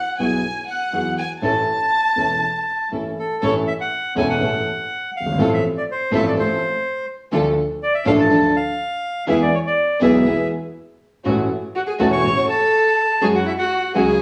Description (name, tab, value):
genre	tango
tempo	122 BPM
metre	4/4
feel	rubato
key	A major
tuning	A4 = 441 Hz
part	bandoneon	melody	0.0-14.2 s	A4 to C#6	-24 LUFS	equal	none
part	warm violin	second line	0.0-2.9, 11.8-14.2 s	E4 to A5	-25 LUFS	equal	none
part	warm concert grand piano	accompaniment	0.2-14.2 s	E1 to A4	-22 LUFS	equal	none
part	dark chamber string section	stabs	0.2-14.2 s	A2 to A4	-25 LUFS	equal	none
room	wet large studio reverb, RT60 1.0 s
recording	band playing live in one room, small room ambience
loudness	-20 LUFS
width	mono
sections	0.0-3.4 A section; 3.4-14.2 A section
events	none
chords	0.0 Eadd9; 1.4 A; 5.4 F/A; 7.3 Dm; 9.3 E; 11.2 A6; 13.2 F#sus2